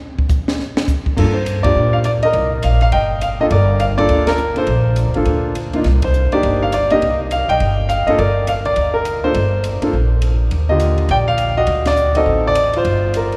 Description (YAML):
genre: jazz piano trio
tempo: 206 BPM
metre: 4/4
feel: swing 62% on 8ths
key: G minor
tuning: A4 = 438 Hz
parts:
  - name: compact cocktail drum kit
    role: drums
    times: 0.2-13.4 s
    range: crash cymbal, hi-hat, kick drum, ride cymbal, snare drum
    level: -26 LUFS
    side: equal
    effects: none
  - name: warm concert grand piano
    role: melody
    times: 1.2-13.4 s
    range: D3 to G5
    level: -18 LUFS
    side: equal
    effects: none
  - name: upright bass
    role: bass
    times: 1.2-13.4 s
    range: G1 to Bb2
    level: -20 LUFS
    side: equal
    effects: none
room: wet cathedral reverb, RT60 5.3 s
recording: recorded in a church or concert hall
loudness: -16 LUFS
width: mono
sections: 0.0-1.2 A section; 1.2-13.4 B section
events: grand piano solo 0.0-1.2; drum solo 0.0-1.2; band accent 1.6, 4.2, 6.0, 11.8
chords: 0.0 N.C.; 1.2 Gm7; 2.3 Cm7; 3.5 Gm7; 5.8 Cm9; 8.2 Gm; 10.5 Ebmaj7; 11.7 D7b9; 12.9 Gm7